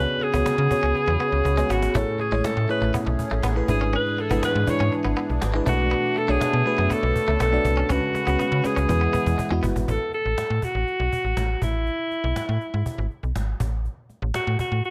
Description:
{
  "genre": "1980s-style pop",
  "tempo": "121 BPM",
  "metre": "4/4",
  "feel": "straight",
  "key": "unclear",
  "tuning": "A4 = 440 Hz",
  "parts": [
    { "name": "bright alto saxophone", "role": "melody", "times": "0.0-14.9 s", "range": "E4 to C#5", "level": "-27 LUFS", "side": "equal", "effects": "none" },
    { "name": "FM electric piano with soft pad layer", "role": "accompaniment", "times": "0.0-9.9 s", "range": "G#2 to D5", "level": "-29 LUFS", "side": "equal", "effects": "chorus, tremolo" },
    { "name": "sweeping resonant pad", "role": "sustained chords", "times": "0.0-9.9 s", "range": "C#3 to B4", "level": "-35 LUFS", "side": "equal", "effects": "chorus, phaser" },
    { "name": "direct-recorded clean electric guitar", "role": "riff", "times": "0.0-9.7 s", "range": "G#3 to C#4", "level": "-35 LUFS", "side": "equal", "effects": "lush chorus, digital delay" },
    { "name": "slap-like FM bass", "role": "bass", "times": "0.0-14.8 s", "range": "G1 to C#3", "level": "-27 LUFS", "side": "equal", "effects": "none" },
    { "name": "cajon", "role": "drums", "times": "0.1-14.9 s", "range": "none", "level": "-34 LUFS", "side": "equal", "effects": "none" }
  ],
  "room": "little or no reverb",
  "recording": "none",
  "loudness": "-23 LUFS",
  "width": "mono",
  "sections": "0.0-9.9 A section; 9.9-14.9 B section",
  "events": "drum fill 1.5-1.9, 7.9-9.9",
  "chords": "0.0 C#7sus4; 1.9 Amaj7; 3.7 E7/G#; 5.7 Bm7; 7.9 C#7sus4; 8.9 E; 9.9 F#m/A; 11.6 E/A; 13.6 F#m/A"
}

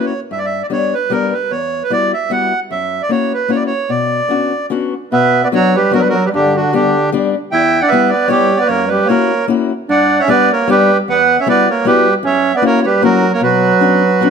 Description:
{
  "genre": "musette waltz",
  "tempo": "151 BPM",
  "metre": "3/4",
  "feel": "swing 55% on 8ths, rubato",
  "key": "B harmonic minor",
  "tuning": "A4 = 440 Hz",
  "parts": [
    { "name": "accordion", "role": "melody", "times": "0.0-14.3 s", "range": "D4 to G5", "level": "-14 LUFS", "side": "right 4 dB", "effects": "none" },
    { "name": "fingerpicked acoustic archtop guitar", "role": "accompaniment", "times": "0.0-14.3 s", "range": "E2 to G4", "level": "-17 LUFS", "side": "left 8 dB", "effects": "none" },
    { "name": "warm clarinet", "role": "second line", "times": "5.1-14.3 s", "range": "D3 to E4", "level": "-17 LUFS", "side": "right 2 dB", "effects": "none" }
  ],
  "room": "moderate recital hall reverb, RT60 1.3 s",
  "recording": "close, detailed microphones",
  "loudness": "-11 LUFS",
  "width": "side -6 dB against mid",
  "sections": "0.0-5.1 A section; 5.1-14.3 A section",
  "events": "none",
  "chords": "0.3 G; 1.5 Emadd9; 2.7 F#7; 3.9 Bmadd9; 5.1 Bm; 6.3 G; 7.5 Em; 8.7 F#7; 9.9 G; 11.1 Emadd9; 12.2 F#7; 13.4 Bmadd9"
}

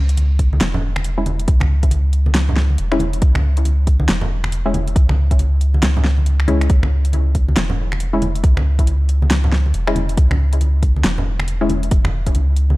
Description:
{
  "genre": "deep dubstep",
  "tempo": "138 BPM",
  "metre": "4/4",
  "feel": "swing 62% on 16ths, half-time",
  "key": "C# minor",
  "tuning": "A4 = 440 Hz",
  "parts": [
    { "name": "soft dub sub bass", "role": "bass", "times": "0.0-12.8 s", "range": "E1 to C#2", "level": "-16 LUFS", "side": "equal", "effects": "none" },
    { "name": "deep house drum kit", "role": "drums", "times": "0.1-12.7 s", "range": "finger snaps, hi-hat, snare drum", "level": "-22 LUFS", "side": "equal", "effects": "none" },
    { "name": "congas", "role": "percussion", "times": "0.2-12.8 s", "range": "none", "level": "-26 LUFS", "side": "right 1 dB", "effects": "none" },
    { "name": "electronic kick drum", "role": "drums", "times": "0.4-12.3 s", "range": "none", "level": "-15 LUFS", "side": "equal", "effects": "none" },
    { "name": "filtered dub chord stab", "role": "stabs", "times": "1.2-11.7 s", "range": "G#3 to E4", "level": "-24 LUFS", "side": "left 2 dB", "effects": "chorus, dub echo" }
  ],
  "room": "digital ambience",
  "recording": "dark, warm production",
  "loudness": "-14 LUFS",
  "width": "side -20 dB against mid",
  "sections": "0.0-12.8 A section",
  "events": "none",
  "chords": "0.0 C#m"
}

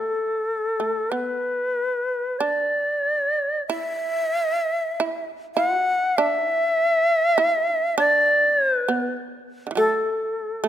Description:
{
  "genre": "japanese traditional, Japanese chamber music",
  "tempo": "46-52 BPM",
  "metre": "4/4",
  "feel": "rubato",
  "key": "E suspended pentatonic",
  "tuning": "A4 = 440 Hz",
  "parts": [
    { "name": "bright reedy shakuhachi", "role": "melody", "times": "0.0-10.7 s", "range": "A4 to F#5", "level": "-20 LUFS", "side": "equal", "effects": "none" },
    { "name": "shamisen", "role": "second line", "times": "0.0-10.7 s", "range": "D3 to F#4", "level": "-27 LUFS", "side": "right 5 dB", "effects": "none" }
  ],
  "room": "light reverb",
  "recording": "close, detailed microphones",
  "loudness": "-20 LUFS",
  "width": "side -10 dB against mid",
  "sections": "0.0-10.7 A section",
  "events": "none",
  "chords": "none"
}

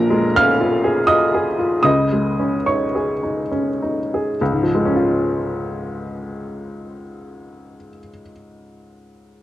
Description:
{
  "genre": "neoclassical minimalist piano",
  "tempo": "67-84 BPM",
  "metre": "3/4",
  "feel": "rubato",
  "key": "Db major",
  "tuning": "A4 = 440 Hz",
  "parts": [
    { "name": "warm upright piano", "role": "solo", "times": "0.0-9.4 s", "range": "Bb1 to F6", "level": "-17 LUFS", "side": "equal", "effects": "cassette tape" }
  ],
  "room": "moderate booth ambience, RT60 0.3 s",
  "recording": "home recording on cassette",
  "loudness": "-16 LUFS",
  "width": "side -14 dB against mid",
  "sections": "0.0-4.4 A section; 4.4-9.4 B section",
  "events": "slowing down 0.0-4.4",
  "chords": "0.0 Bbm7; 1.8 Dbsus2; 4.4 Db"
}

